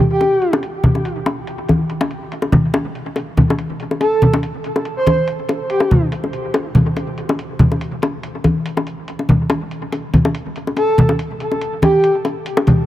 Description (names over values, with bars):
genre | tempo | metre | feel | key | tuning
deep dubstep | 142 BPM | 4/4 | swing 54% on 16ths, half-time | unclear | A4 = 440 Hz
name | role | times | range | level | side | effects
congas and bongos | percussion | 0.0-12.8 s | none | -16 LUFS | left 1 dB | dub echo
breathy flute-like synth lead | melody | 0.1-0.5, 4.0-6.0, 10.8-12.2 s | G4 to C5 | -19 LUFS | right 1 dB | tremolo, analog chorus, dub echo
electronic hi-hat | drums | 0.2-12.8 s | none | -35 LUFS | right 1 dB | low-pass filter on hats
room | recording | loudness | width
light reverb, small room reverb | none | -15 LUFS | side -13 dB against mid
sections
0.0-12.9 A section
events
none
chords
none